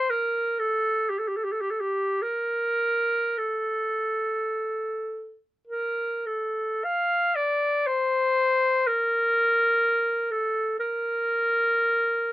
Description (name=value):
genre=classical, free, expressive piece for unaccompanied clarinet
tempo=47-65 BPM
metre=4/4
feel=rubato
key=Bb major from 6.8 s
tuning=A4 = 439 Hz
part: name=bright clarinet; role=solo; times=0.0-12.3 s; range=G4 to F5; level=-23 LUFS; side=equal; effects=none
room=little or no reverb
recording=close, detailed microphones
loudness=-23 LUFS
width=side -15 dB against mid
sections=0.0-12.3 A section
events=none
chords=none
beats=0.12 1.10 | 2.22 3.38 4.56 5.67 | 6.84 7.87 8.87 9.83 | 10.80 11.75